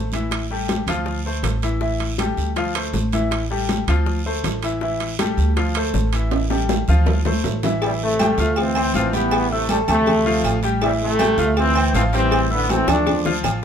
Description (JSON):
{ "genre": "latin, salsa", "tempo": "160 BPM", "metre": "4/4", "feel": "straight", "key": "A minor", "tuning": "A4 = 440 Hz", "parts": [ { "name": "bright upright piano", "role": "accompaniment", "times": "0.0-13.6 s", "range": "E3 to F6", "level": "-24 LUFS", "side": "left 2 dB", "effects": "none" }, { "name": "upright bass", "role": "bass", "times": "0.0-13.6 s", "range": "A1 to D2", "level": "-22 LUFS", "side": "right 1 dB", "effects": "none" }, { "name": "congas", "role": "percussion", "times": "0.1-13.6 s", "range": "none", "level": "-28 LUFS", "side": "left 1 dB", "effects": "none" }, { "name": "guiro", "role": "percussion", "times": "0.1-13.6 s", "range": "none", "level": "-34 LUFS", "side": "right 7 dB", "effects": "none" }, { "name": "timbales and agogo bells", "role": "percussion", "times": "0.1-13.6 s", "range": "none", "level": "-27 LUFS", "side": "right 5 dB", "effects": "none" }, { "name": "bongos and cowbell", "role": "percussion", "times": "0.3-13.6 s", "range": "none", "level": "-29 LUFS", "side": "left 7 dB", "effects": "none" }, { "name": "bright trombone section", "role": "melody", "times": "7.8-13.4 s", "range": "C3 to D4", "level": "-20 LUFS", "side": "equal", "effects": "none" } ], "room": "light reverb", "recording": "minimal, uncompressed stereo recording", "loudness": "-17 LUFS", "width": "side -8 dB against mid", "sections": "0.0-7.8 A section; 7.8-13.6 B section", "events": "drum fill 6.3-7.8, 12.9-13.6", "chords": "0.3 A5; 1.1 Dm9; 1.8 A5; 2.6 Dm9; 3.3 A5; 4.1 Dm9; 4.8 A5; 5.6 Dm9; 6.3 A5; 7.1 Dm9; 7.8 Am7; 10.1 Dm7; 10.8 Am7; 12.3 A5; 13.1 Dm", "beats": "| 0.31 0.69 1.06 1.44 | 1.81 2.19 2.56 2.94 | 3.31 3.69 4.06 4.44 | 4.82 5.19 5.57 5.94 | 6.32 6.69 7.07 7.44 | 7.82 8.20 8.57 8.94 | 9.32 9.69 10.07 10.44 | 10.82 11.19 11.57 11.94 | 12.32 12.69 13.07 13.44" }